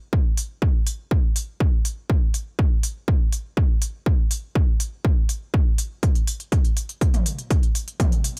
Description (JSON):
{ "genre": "melodic techno", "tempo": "122 BPM", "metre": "4/4", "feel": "straight", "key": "none", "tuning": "none", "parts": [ { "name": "electronic kick drum", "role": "drums", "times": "0.1-8.1 s", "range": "none", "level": "-22 LUFS", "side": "equal", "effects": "none" }, { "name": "techno drum kit", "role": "drums", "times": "0.4-8.4 s", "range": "hi-hat, toms", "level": "-30 LUFS", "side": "equal", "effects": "none" } ], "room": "little or no reverb", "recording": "none", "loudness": "-22 LUFS", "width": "mono", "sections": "0.0-8.4 A section", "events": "build-up 0.0-8.4; drum fill 6.0-8.4", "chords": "none" }